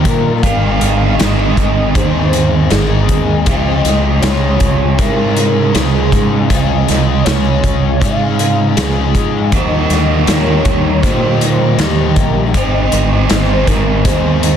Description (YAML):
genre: rock, shoegaze and dream pop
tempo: 79 BPM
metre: 4/4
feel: straight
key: Db lydian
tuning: A4 = 440 Hz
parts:
  - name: warm velvety synth lead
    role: melody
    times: 0.0-14.6 s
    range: G4 to F5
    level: -20 LUFS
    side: equal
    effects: chorus, slapback echo
  - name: fingerpicked twelve-string acoustic guitar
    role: arpeggios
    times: 0.0-14.6 s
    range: Eb3 to Ab4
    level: -24 LUFS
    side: right 1 dB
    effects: ensemble chorus, slapback echo
  - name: crunchy overdriven guitar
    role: riff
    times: 0.0-14.6 s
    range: Ab2 to Bb4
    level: -18 LUFS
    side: left 8 dB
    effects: wide subtle chorus
  - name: overdriven electric guitar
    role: riff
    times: 0.0-14.6 s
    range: Ab2 to Ab4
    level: -17 LUFS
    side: right 9 dB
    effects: reverse reverb
  - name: growling fingered electric bass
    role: bass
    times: 0.0-14.6 s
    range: Ab1 to Bb2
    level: -16 LUFS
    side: equal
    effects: overdrive
  - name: loose indie drum kit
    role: drums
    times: 0.1-14.6 s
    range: hi-hat, kick drum, snare drum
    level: -17 LUFS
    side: equal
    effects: none
room: light reverb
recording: dense, heavily limited modern master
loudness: -11 LUFS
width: side -8 dB against mid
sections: 0.0-14.6 A section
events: none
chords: 0.4 Ab; 3.5 Db; 9.5 Ebadd9; 12.5 Ab